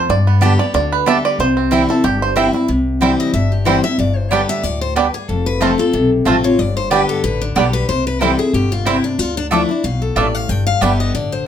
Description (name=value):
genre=bluegrass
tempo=185 BPM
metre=4/4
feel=swing 55% on 8ths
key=C major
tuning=A4 = 440 Hz
part: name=bluegrass banjo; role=melody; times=0.0-10.9 s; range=G3 to E5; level=-19 LUFS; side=right 5 dB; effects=none
part: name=picked steel-string acoustic guitar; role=accompaniment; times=0.0-11.5 s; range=F2 to G4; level=-18 LUFS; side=left 3 dB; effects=none
part: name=upright bass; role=bass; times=0.1-11.4 s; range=F1 to G2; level=-20 LUFS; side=equal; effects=none
part: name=mandolin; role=stabs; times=0.4-10.9 s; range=B3 to D6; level=-18 LUFS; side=right 6 dB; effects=none
part: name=picked steel-string acoustic guitar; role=melody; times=3.2-11.5 s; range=D4 to G5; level=-21 LUFS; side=left 4 dB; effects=none
room=moderate studio ambience, RT60 0.5 s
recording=none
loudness=-13 LUFS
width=side -9 dB against mid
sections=0.0-2.7 A section; 2.7-11.5 B section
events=five-string banjo solo 0.0-2.7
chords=0.1 Gadd9; 1.4 C; 4.0 G; 5.3 F; 6.6 G; 7.9 C; 9.2 Dmadd9; 10.5 G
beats=| 0.10 0.42 0.74 1.07 | 1.39 1.72 2.04 2.36 | 2.69 3.01 3.34 3.66 | 3.99 4.31 4.64 4.96 | 5.29 5.61 5.94 6.26 | 6.59 6.91 7.24 7.56 | 7.89 8.21 8.54 8.86 | 9.19 9.52 9.84 10.16 | 10.49 10.82 11.14